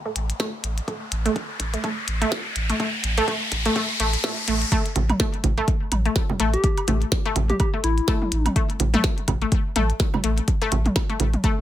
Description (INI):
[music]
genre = minimal techno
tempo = 125 BPM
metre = 4/4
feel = swing 57% on 16ths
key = unclear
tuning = A4 = 440 Hz
[part]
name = riser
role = sound effects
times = 0.0-4.7 s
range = none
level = -28 LUFS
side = left 1 dB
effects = none
[part]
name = resonant blip pluck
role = riff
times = 0.1-11.5 s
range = A3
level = -26 LUFS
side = left 1 dB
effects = chorus, sidechain pumping, ping-pong delay
[part]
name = saturated sub bass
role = bass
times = 0.2-11.4 s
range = A1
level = -23 LUFS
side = equal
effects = sidechain pumping
[part]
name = minimal click drum kit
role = drums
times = 0.2-11.5 s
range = hi-hat, snare drum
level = -27 LUFS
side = left 1 dB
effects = none
[part]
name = electronic kick drum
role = drums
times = 0.4-11.5 s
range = none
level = -23 LUFS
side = equal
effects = high-pass filter on kick, high-pass filter on room
[part]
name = electronic woodblock, congas and toms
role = percussion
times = 4.7-11.6 s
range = none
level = -27 LUFS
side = right 3 dB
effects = overdrive, dub echo
[part]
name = soft struck synth lead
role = melody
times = 6.5-8.5 s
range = E4 to G4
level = -28 LUFS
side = left 3 dB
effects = chorus, tremolo, dub echo
[sound]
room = light reverb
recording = none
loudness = -20 LUFS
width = side -12 dB against mid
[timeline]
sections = 0.0-4.7 A section; 4.7-11.6 B section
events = build-up 0.0-4.7; riser 0.0-4.7; filter sweep on synth pluck 0.0-4.7; drop 4.7-11.6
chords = none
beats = 0.40 | 0.88 1.36 1.84 2.32 | 2.80 3.28 3.76 4.24 | 4.72 5.20 5.68 6.16 | 6.64 7.12 7.60 8.08 | 8.56 9.04 9.52 10.00 | 10.48 10.96 11.44